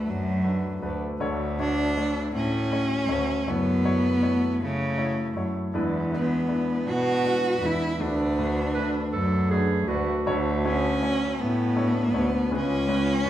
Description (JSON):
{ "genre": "acoustic folk-pop ballad", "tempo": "53 BPM (dotted quarters)", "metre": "6/8", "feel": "straight", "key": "unclear", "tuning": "A4 = 440 Hz", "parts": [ { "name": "rich cello", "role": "melody", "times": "0.0-13.3 s", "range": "F#3 to F#4", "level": "-26 LUFS", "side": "equal", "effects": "none" }, { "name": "warm upright piano", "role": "accompaniment", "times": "0.0-13.3 s", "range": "F#1 to C#5", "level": "-29 LUFS", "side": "left 1 dB", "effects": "none" }, { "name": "warm cello", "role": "bass", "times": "0.1-13.3 s", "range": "C#2 to C#3", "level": "-27 LUFS", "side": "right 1 dB", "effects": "none" }, { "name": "clear clarinet", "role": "second line", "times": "8.7-13.3 s", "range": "E#4 to B4", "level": "-29 LUFS", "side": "right 4 dB", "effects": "none" } ], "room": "moderate recital hall reverb, RT60 1.4 s", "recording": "minimal, uncompressed stereo recording", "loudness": "-23 LUFS", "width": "side -12 dB against mid", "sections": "0.0-13.3 A section", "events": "none", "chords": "0.0 Bm7/D; 1.2 Dmaj7; 3.5 F#m7; 5.7 E7; 8.0 Bm7/D; 10.3 Dmaj7; 12.5 C#7" }